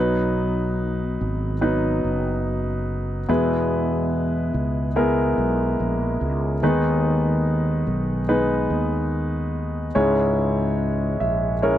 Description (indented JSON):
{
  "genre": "pop ballad",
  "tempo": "72 BPM",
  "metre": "4/4",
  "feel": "straight",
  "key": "B major",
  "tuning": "A4 = 440 Hz",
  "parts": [
    { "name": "clear concert grand piano", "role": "accompaniment", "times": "0.0-11.8 s", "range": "G#2 to E5", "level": "-22 LUFS", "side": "left 1 dB", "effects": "none" },
    { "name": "fretless electric bass", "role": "bass", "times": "0.0-11.8 s", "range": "F#1 to E2", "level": "-24 LUFS", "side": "right 1 dB", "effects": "analog chorus" }
  ],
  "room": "little or no reverb",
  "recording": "dry, close 1970s-style studio recording",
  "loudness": "-20 LUFS",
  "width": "side -12 dB against mid",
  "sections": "0.0-11.8 A section",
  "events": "grand piano fill 10.8-11.8",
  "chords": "0.0 B; 3.3 E; 6.6 G#m; 10.0 C#m"
}